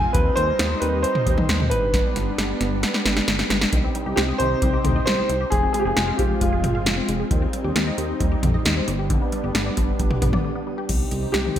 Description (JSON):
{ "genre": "synth-pop", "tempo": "134 BPM", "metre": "4/4", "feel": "straight", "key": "C harmonic minor", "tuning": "A4 = 440 Hz", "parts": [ { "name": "warm baby grand piano", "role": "melody", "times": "0.0-7.0, 11.3-11.6 s", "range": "F4 to Ab5", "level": "-25 LUFS", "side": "equal", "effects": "shimmer reverb" }, { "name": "lush unison pad", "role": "sustained chords", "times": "0.0-11.6 s", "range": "C3 to G4", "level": "-27 LUFS", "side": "equal", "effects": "chorus, shimmer reverb" }, { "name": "chorused synth bass", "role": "bass", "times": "0.0-11.6 s", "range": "F1 to F2", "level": "-25 LUFS", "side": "equal", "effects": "none" }, { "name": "electro analog drum machine", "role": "drums", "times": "0.1-11.6 s", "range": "crash cymbal, hi-hat, kick drum, snare drum, toms", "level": "-22 LUFS", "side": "equal", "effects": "gated reverb" }, { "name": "resonant blip pluck", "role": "arpeggios", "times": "3.7-10.9 s", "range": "D3 to F5", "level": "-31 LUFS", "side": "left 2 dB", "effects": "chorus, phaser, shimmer reverb, digital delay" } ], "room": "moderate lush hall reverb, RT60 1.6 s", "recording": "bright 1980s-style digital production", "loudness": "-19 LUFS", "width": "side -10 dB against mid", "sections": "0.0-3.7 A section; 3.7-10.9 B section", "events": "drum fill 1.9-3.7; break 10.4-10.9", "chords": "0.1 Cm/Eb; 1.7 G; 3.7 Cm; 5.5 Fm; 7.3 Cm/Eb; 8.9 G; 10.9 Cm" }